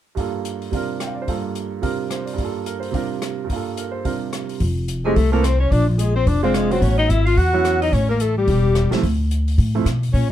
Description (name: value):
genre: jazz, small-group swing and bop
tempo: 217 BPM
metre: 4/4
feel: swing 61% on 8ths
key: F major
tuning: A4 = 439 Hz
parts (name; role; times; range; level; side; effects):
- clear baby grand piano; accompaniment; 0.2-9.9 s; G2 to G5; -24 LUFS; right 6 dB; none
- open jazz drum kit; drums; 0.2-10.2 s; hi-hat, kick drum, rim click, snare drum; -28 LUFS; left 1 dB; none
- upright bass; bass; 4.6-10.3 s; E1 to B2; -18 LUFS; equal; none
- bright alto saxophone; second line; 5.0-10.3 s; F4 to F#5; -27 LUFS; right 3 dB; none
- warm tenor saxophone; melody; 5.1-10.3 s; F3 to F#4; -21 LUFS; left 4 dB; none
room: light reverb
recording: dark, warm production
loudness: -18 LUFS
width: side -12 dB against mid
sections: 0.2-4.6 A section; 4.6-10.3 B section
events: none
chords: 0.2 Gm9; 0.7 C7sus4; 1.3 Gm9; 1.8 C7sus4; 2.4 Gm9; 2.9 C7sus4; 3.5 Gm9; 4.1 C7sus4; 4.6 Fmaj7; 5.7 Bb9; 6.8 A69; 7.9 A5; 9.0 D5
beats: | 0.17 0.45 0.73 1.00 | 1.28 1.56 1.84 2.11 | 2.39 2.67 2.94 3.22 | 3.50 3.78 4.05 4.33 | 4.61 4.88 5.16 5.44 | 5.71 5.99 6.27 6.54 | 6.82 7.10 7.37 7.65 | 7.92 8.20 8.48 8.75 | 9.03 9.31 9.58 9.86 | 10.13